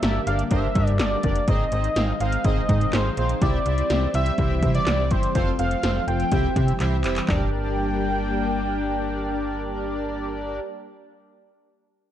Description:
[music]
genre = synth-pop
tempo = 124 BPM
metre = 4/4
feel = straight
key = G dorian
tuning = A4 = 440 Hz
[part]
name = octave-doubled lead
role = melody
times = 0.0-10.6 s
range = C5 to G5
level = -27 LUFS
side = equal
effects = chorus, tape echo
[part]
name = analog synth brass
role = accompaniment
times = 0.0-10.6 s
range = Bb3 to F5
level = -28 LUFS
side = equal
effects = chorus
[part]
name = soft string machine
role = sustained chords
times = 0.0-10.6 s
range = D3 to D4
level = -30 LUFS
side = left 1 dB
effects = phaser, ensemble chorus
[part]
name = slap-like FM bass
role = bass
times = 0.0-10.6 s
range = F1 to C3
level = -25 LUFS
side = equal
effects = none
[part]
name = 80s electronic pad drums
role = drums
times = 0.0-7.4 s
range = handclaps, hi-hat, kick drum, snare drum, toms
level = -25 LUFS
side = equal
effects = gated reverb on snare and toms
[sound]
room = light reverb, digital ambience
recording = worn, warbling old tape, cassette tape, warbly pitch drift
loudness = -20 LUFS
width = side -11 dB against mid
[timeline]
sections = 0.0-7.3 A section; 7.3-11.2 B section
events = drum fill 6.8-7.3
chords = 0.0 Gm; 1.5 Ab; 3.4 C; 5.3 F; 6.3 C; 7.3 Gm

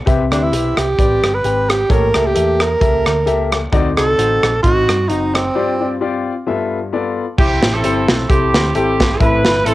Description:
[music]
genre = uptempo gospel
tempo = 131 BPM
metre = 4/4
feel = swing 55% on 8ths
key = C major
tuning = A4 = 440 Hz
[part]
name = warm concert grand piano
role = accompaniment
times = 0.1-9.7 s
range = G2 to G5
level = -19 LUFS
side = left 5 dB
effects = cassette tape
[part]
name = hollow-body short-scale fingered electric bass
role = bass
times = 0.1-9.7 s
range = F#1 to G2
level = -21 LUFS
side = equal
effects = none
[part]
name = modern studio drum kit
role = drums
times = 0.1-9.7 s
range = crash cymbal, hi-hat, kick drum, rim click, snare drum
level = -17 LUFS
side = right 1 dB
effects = none
[part]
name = breathy tenor saxophone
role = melody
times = 0.3-6.0 s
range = C4 to B4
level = -16 LUFS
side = right 2 dB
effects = cassette tape
[part]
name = clear horn section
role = melody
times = 7.4-9.7 s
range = C4 to B4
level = -16 LUFS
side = right 2 dB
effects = cassette tape, analog delay
[sound]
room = light reverb, studio ambience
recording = home recording on cassette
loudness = -13 LUFS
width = side -16 dB against mid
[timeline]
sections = 0.0-7.4 A section; 7.4-9.7 B section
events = break 5.6-7.4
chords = 0.1 Cmaj7; 1.9 A7b9; 3.7 D7b9; 5.6 G7sus4; 6.5 G13; 7.4 C; 9.2 Am

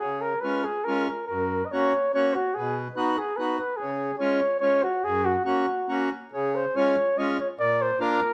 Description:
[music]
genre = alpine folk, alpine dance band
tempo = 143 BPM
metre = 3/4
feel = rubato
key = F# major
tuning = A4 = 440 Hz
[part]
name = trumpet with bucket mute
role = melody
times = 0.0-8.3 s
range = F#4 to Eb5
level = -27 LUFS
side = equal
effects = none
[part]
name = accordion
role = accompaniment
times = 0.0-8.2 s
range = F#2 to F#4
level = -30 LUFS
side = equal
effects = none
[sound]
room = wet studio reverb, RT60 0.8 s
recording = band playing live in one room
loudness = -26 LUFS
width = mono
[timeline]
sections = 0.0-6.3 A section; 6.3-8.3 B section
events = none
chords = 0.0 C#; 1.3 F#; 2.6 B; 3.8 C#; 5.0 F#; 6.3 Db; 7.6 Bb

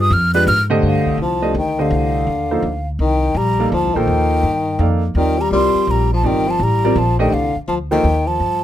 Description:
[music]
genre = jazz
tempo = 166 BPM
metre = 3/4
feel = swing 65% on 8ths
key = C dorian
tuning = A4 = 440 Hz
[part]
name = breathy mellow concert flute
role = melody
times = 0.0-8.6 s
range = F5 to Gb6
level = -20 LUFS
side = right 2 dB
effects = none
[part]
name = warm grand piano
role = accompaniment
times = 0.0-8.0 s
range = D3 to F5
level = -20 LUFS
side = right 2 dB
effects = none
[part]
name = upright bass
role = bass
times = 0.0-8.6 s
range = G1 to Ab2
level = -19 LUFS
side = equal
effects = none
[part]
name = breathy tenor saxophone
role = second line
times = 0.8-8.6 s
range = D3 to G3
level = -20 LUFS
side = left 6 dB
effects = none
[sound]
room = little or no reverb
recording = close, detailed microphones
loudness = -14 LUFS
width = side -12 dB against mid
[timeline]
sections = 0.8-8.6 A section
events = none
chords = 0.0 G7b9; 0.8 Cm11

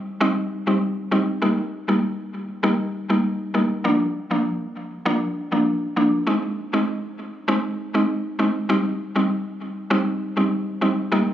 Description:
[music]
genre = dancehall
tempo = 99 BPM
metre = 4/4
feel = straight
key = C minor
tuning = A4 = 440 Hz
[part]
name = mallet-like synth pluck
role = solo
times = 0.2-11.3 s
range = F3 to Eb4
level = -20 LUFS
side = equal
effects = chorus, tape echo
[sound]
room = light reverb, digital ambience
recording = recorded on a phone in the room, club reverb, compression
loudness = -20 LUFS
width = side -11 dB against mid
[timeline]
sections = 0.0-11.3 A section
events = none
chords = 0.0 Cm; 1.4 Eb; 3.8 Bb; 6.3 Ab; 8.7 Cm

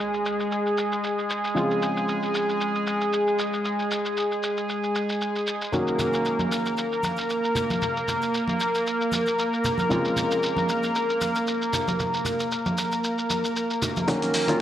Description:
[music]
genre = nu-disco, nu disco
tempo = 115 BPM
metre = 4/4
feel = swing 55% on 16ths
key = unclear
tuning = A4 = 437 Hz
[part]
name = warm concert grand piano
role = accompaniment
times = 0.0-14.6 s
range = Db3 to Gb4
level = -29 LUFS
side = left 1 dB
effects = sidechain pumping, low-pass filter
[part]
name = lush unison pad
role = sustained chords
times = 0.0-14.6 s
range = Ab3 to Bb4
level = -24 LUFS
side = equal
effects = chorus, sidechain pumping
[part]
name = electronic shaker and hi-hat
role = drums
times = 0.0-14.6 s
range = none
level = -32 LUFS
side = equal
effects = low-pass filter on hats, low-pass filter on perc, low-pass filter on snare, low-pass filter on room
[part]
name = cabasa and congas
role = percussion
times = 5.7-14.1 s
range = none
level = -31 LUFS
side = right 1 dB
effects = none
[part]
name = wide unison pluck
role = arpeggios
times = 14.1-14.6 s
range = Db3 to Db4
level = -34 LUFS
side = right 2 dB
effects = none
[part]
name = electronic kick drum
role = drums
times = 14.1-14.2 s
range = none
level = -29 LUFS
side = equal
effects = high-pass filter on kick
[part]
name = riser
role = sound effects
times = 14.1-14.6 s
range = none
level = -52 LUFS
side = right 4 dB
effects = none
[sound]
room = moderate echo chamber reverb, RT60 1.7 s, digital ambience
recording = dry, gritty hardware recording, cassette tape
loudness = -23 LUFS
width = side -11 dB against mid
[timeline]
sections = 0.0-14.1 A section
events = none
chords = 0.0 Ebm7; 1.6 Dbmaj7; 5.7 Ebm7; 9.9 Dbmaj7; 14.1 Ebm7

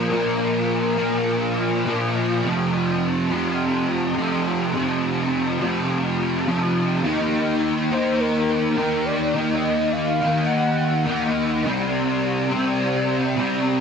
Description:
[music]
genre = rock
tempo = 104 BPM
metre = 4/4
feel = straight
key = unclear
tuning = A4 = 439 Hz
[part]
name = warm velvety synth lead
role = melody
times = 0.0-1.8, 7.9-11.3 s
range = Bb4 to Gb5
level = -25 LUFS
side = left 1 dB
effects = chorus, tape echo
[part]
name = fuzz guitar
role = riff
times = 0.0-13.8 s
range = F2 to Eb4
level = -20 LUFS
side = equal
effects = distortion, ensemble chorus
[sound]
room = moderate recital hall reverb, RT60 1.5 s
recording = dense, heavily limited modern master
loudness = -19 LUFS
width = side -6 dB against mid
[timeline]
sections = 0.0-13.8 A section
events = none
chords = 0.0 Bb5; 2.4 F5; 7.1 Ebm; 11.6 C5

